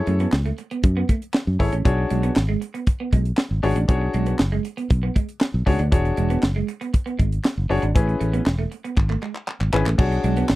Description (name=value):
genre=early-eighties boogie funk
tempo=118 BPM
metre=4/4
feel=straight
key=B dorian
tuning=A4 = 442 Hz
part: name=clear baby grand piano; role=accompaniment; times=0.0-10.4 s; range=C#4 to C#5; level=-24 LUFS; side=left 3 dB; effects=none
part: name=semi-hollow electric guitar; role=riff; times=0.1-10.5 s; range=G#3 to D4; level=-29 LUFS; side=right 6 dB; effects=wide subtle chorus
part: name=fingered electric bass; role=bass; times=0.1-10.6 s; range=E1 to F#2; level=-21 LUFS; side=equal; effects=none
part: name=tight funk drum kit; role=drums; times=0.1-10.6 s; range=crash cymbal, handclaps, hi-hat, kick drum, snare drum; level=-20 LUFS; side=equal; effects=none
room=little or no reverb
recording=dry, close 1970s-style studio recording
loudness=-19 LUFS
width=side -18 dB against mid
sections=0.0-10.0 A section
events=drum fill 9.0-10.0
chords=0.0 F#m9; 1.9 Bm69; 5.9 E13; 8.0 Amaj7; 10.0 Bm69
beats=0.33 0.84 1.34 | 1.85 2.36 2.87 3.38 | 3.89 4.40 4.90 5.41 | 5.92 6.43 6.94 7.45 | 7.96 8.46 8.97 9.48 | 9.99 10.50